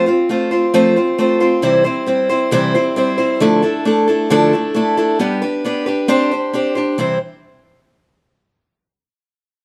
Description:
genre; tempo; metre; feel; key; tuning
rock; 134 BPM; 4/4; straight; C major; A4 = 439 Hz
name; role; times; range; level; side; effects
picked steel-string acoustic guitar; accompaniment; 0.0-7.2 s; C3 to C5; -16 LUFS; equal; none
room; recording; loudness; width
light reverb; none; -16 LUFS; mono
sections
0.0-7.0 A section; 7.0-8.8 B section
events
none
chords
0.0 F; 1.6 C; 3.4 Dmadd9; 5.2 G; 6.1 Csus2; 7.0 C

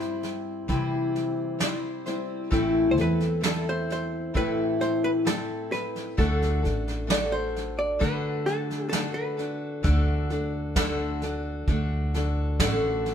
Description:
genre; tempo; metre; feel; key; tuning
acoustic folk duo or small band; 66 BPM; 4/4; straight; unclear; A4 = 440 Hz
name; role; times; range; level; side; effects
picked steel-string acoustic guitar; accompaniment; 0.0-13.1 s; A2 to C5; -28 LUFS; left 2 dB; none
upright bass; bass; 0.0-13.1 s; A1 to D3; -29 LUFS; equal; none
soft brush drum kit; drums; 0.0-13.1 s; kick drum, snare drum; -29 LUFS; right 1 dB; none
hollow-body jazz guitar; melody; 2.9-9.8 s; A4 to D5; -31 LUFS; right 1 dB; none
room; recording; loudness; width
light reverb; band playing live in one room; -24 LUFS; side -8 dB against mid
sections
0.0-9.8 A section; 9.8-13.1 B section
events
hollow-body jazz guitar solo 0.0-9.8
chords
0.0 C; 2.5 Am; 6.2 D

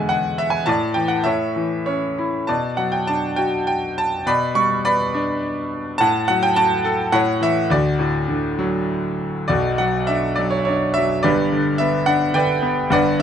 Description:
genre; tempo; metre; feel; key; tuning
classical, lyrical solo piano; 95-110 BPM; 3/4; rubato; D major, B minor from 9.5 s; A4 = 442 Hz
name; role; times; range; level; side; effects
bright concert grand piano; solo; 0.0-13.2 s; G1 to C#6; -17 LUFS; equal; none
room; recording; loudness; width
light reverb; nothing above 10.3 kHz; -17 LUFS; side -8 dB against mid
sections
0.0-9.5 A section; 9.5-13.2 B section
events
none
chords
0.0 E7; 0.7 Asus4; 1.2 A; 2.5 Bm; 4.3 G/B; 6.0 F#m/A; 7.1 A; 7.7 D; 9.5 Bm; 11.2 G

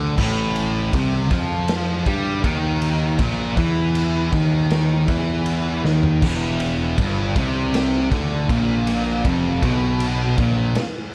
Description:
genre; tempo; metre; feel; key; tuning
stoner and doom metal; 79 BPM; 4/4; straight; unclear; A4 = 440 Hz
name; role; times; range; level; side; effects
thick fuzz guitar; riff; 0.0-10.7 s; E2 to G3; -26 LUFS; equal; distortion
fuzz picked electric bass; bass; 0.0-10.7 s; E1 to G2; -27 LUFS; equal; overdrive
thick fuzz guitar; riff; 0.2-10.7 s; E2 to G3; -25 LUFS; equal; distortion
raw garage drum kit; drums; 0.2-10.9 s; crash cymbal, kick drum, ride cymbal, snare drum, toms; -27 LUFS; equal; none
room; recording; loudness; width
light reverb; dark, warm production; -20 LUFS; mono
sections
0.0-6.2 A section; 6.2-11.1 A section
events
drum fill 5.8-6.2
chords
0.2 A5; 6.2 Em

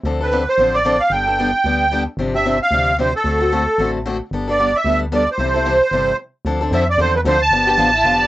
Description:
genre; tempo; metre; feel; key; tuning
acoustic string swing (jazz manouche); 225 BPM; 4/4; swing 57% on 8ths; unclear; A4 = 440 Hz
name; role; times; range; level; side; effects
organ-like FM bass; bass; 0.0-8.3 s; F1 to F2; -23 LUFS; equal; none
picked acoustic archtop guitar; accompaniment; 0.1-8.2 s; C3 to A4; -21 LUFS; left 3 dB; none
musette accordion; melody; 0.2-8.3 s; A4 to A5; -15 LUFS; right 2 dB; cassette tape
rich violin; second line; 7.7-8.3 s; E4 to D5; -22 LUFS; right 2 dB; none
room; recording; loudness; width
wet booth ambience, RT60 0.2 s; home recording on cassette, nothing above 8.0 kHz; -14 LUFS; side -16 dB against mid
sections
0.0-6.5 A section; 6.5-8.3 B section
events
stop 6.2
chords
0.0 Dm7; 1.1 Gadd9; 2.2 G7sus4; 3.3 D7; 4.3 Gadd9; 5.4 C6; 6.5 Dm7; 7.5 G9

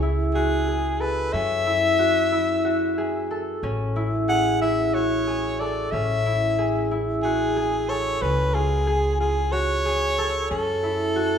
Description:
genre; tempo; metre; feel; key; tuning
contemporary instrumental, chamber music in an uneven meter; 183 BPM (eighths); 7/8; straight; A major; A4 = 438 Hz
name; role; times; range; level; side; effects
concert harp; arpeggios; 0.0-11.4 s; C#4 to A4; -24 LUFS; equal; none
upright bass; bass; 0.0-11.4 s; A1 to F#2; -28 LUFS; equal; none
breathy soprano saxophone; melody; 0.3-11.4 s; G#4 to F#5; -24 LUFS; left 2 dB; none
room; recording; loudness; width
moderate recital hall reverb, RT60 1.7 s; recorded in a church or concert hall; -20 LUFS; side -8 dB against mid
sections
0.0-11.4 A section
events
none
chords
0.0 C#m; 1.3 F#m7; 3.6 Amaj7; 8.2 C#; 10.5 F#m7

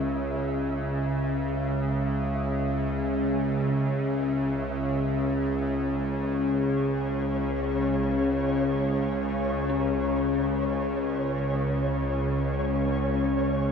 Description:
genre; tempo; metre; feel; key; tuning
dark ambient drone; free time; none; none; unclear; A4 = 436 Hz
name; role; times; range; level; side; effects
dark detuned synth bell; arpeggios; 0.0-13.7 s; C#4 to G#4; -41 LUFS; left 3 dB; none
bowed-like drone; drone; 0.0-13.7 s; C#2 to C#3; -25 LUFS; equal; built-in reverb
flickering grainy texture; texture; 0.0-13.7 s; C#5 to E5; -35 LUFS; equal; built-in reverb
room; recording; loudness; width
wet cathedral reverb, RT60 5.4 s; in a vast, echoing space; -24 LUFS; side -6 dB against mid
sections
0.0-13.7 A section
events
fade-in on synth texture 0.0-13.7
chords
0.0 C#m

